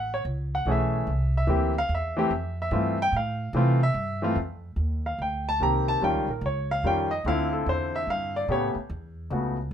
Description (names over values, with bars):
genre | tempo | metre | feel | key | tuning
jazz piano trio | 146 BPM | 3/4 | swing 66% on 8ths | F major | A4 = 439 Hz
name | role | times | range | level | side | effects
clear baby grand piano | melody | 0.0-9.6 s | C#3 to Bb5 | -26 LUFS | left 1 dB | none
upright bass | bass | 0.0-9.7 s | A1 to C3 | -28 LUFS | right 1 dB | none
room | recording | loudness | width
moderate club reverb, RT60 0.6 s | minimal, uncompressed stereo recording | -24 LUFS | side -9 dB against mid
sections
0.0-4.8 A section; 4.8-9.7 A section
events
grand piano solo 0.0-9.7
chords
0.0 Amaj7; 1.1 C7; 2.3 Fmaj7; 4.8 Eb6; 6.0 Eb9; 7.2 Dm9; 8.5 Aadd9